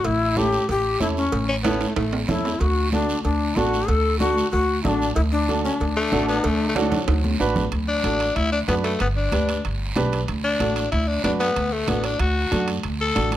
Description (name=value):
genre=latin, cumbia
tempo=188 BPM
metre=4/4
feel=straight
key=D major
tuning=A4 = 439 Hz
part: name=breathy bright long shakuhachi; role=melody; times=0.0-7.4 s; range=C#4 to A4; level=-23 LUFS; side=left 3 dB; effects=none
part: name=upright bass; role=bass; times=0.0-13.4 s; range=G1 to F#2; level=-24 LUFS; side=equal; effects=none
part: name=congas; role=percussion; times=0.0-13.4 s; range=none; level=-30 LUFS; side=left 1 dB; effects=none
part: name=cowbell and timbales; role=percussion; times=0.0-13.4 s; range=none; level=-31 LUFS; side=right 6 dB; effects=none
part: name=guiro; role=percussion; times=0.0-13.4 s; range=none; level=-34 LUFS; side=right 5 dB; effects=none
part: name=warm upright piano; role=accompaniment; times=0.4-13.4 s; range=C#4 to B4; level=-26 LUFS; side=right 4 dB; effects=none
part: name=growling tenor saxophone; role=second line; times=1.5-2.2, 6.0-13.3 s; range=F#3 to A4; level=-24 LUFS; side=left 3 dB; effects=none
room=light reverb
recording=close, detailed microphones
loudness=-19 LUFS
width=side -12 dB against mid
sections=0.0-7.7 A section; 7.7-13.4 B section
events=drum fill 1.6-2.6, 6.8-7.7; tenor saxophone solo 7.7-13.4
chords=0.1 A7; 2.6 D; 9.0 G; 10.3 D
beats=| 0.05 0.37 0.69 1.01 | 1.33 1.65 1.97 2.29 | 2.61 2.93 3.25 3.57 | 3.89 4.21 4.53 4.85 | 5.17 5.49 5.80 6.12 | 6.44 6.76 7.08 7.40 | 7.72 8.04 8.36 8.68 | 9.00 9.32 9.64 9.96 | 10.28 10.60 10.92 11.24 | 11.56 11.88 12.20 12.52 | 12.84 13.16